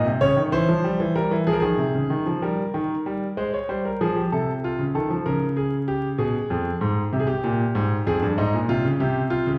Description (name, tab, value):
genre	classical, baroque-style two-part invention for grand piano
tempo	64 BPM (dotted quarters)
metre	6/8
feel	straight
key	unclear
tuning	A4 = 440 Hz
part	bright grand piano	solo	0.0-9.6 s	F2 to Db5	-23 LUFS	equal	none
room	wet recital hall reverb, RT60 1.4 s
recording	heard from further back in the room, vinyl crackle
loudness	-23 LUFS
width	mono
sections	0.0-2.4 A section; 2.4-9.6 B section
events	none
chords	0.0 Ab (rootless); 0.5 C7/E; 1.5 Fm; 2.4 Eb; 3.4 Ab; 4.3 F7/C; 5.2 Bbm/Db; 6.2 Fdim; 7.1 C5; 8.1 Fm; 9.0 C5